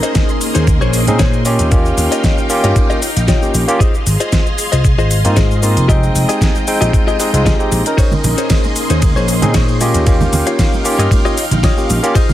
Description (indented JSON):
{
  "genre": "nu-disco, nu disco",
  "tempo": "115 BPM",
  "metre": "4/4",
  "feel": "swing 53% on 16ths",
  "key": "unclear",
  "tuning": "A4 = 440 Hz",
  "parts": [
    { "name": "barky tine electric piano", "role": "accompaniment", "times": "0.0-12.1 s", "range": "Ab3 to G5", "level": "-18 LUFS", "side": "equal", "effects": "sidechain pumping, tape echo" },
    { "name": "string machine, full ensemble", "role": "sustained chords", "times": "0.0-12.3 s", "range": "Bb3 to C6", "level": "-22 LUFS", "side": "equal", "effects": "ensemble chorus, sidechain pumping" },
    { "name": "direct-recorded clean electric guitar", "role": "riff", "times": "0.0-12.3 s", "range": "Eb4 to G5", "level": "-22 LUFS", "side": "left 4 dB", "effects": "wide subtle chorus, tape echo" },
    { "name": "pop drum kit", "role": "drums", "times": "0.0-12.3 s", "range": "hi-hat, ride cymbal, shaker, snare drum", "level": "-20 LUFS", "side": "equal", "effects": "studio reverb" },
    { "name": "electronic kick drum", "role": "drums", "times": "0.2-12.3 s", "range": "none", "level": "-14 LUFS", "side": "equal", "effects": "studio reverb" },
    { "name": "vintage slap bass", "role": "bass", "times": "0.6-12.0 s", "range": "F1 to Bb2", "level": "-15 LUFS", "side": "equal", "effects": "none" },
    { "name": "congas", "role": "percussion", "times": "8.1-12.3 s", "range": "none", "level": "-21 LUFS", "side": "right 4 dB", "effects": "none" }
  ],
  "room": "little or no reverb",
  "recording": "none",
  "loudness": "-11 LUFS",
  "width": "side -13 dB against mid",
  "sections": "0.0-12.3 A section",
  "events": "clean electric guitar fill 2.8-3.8",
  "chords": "0.0 Bbm11; 1.5 Eb9; 3.8 Ab6; 5.9 Fm9; 8.0 Bbm11; 9.8 Eb9"
}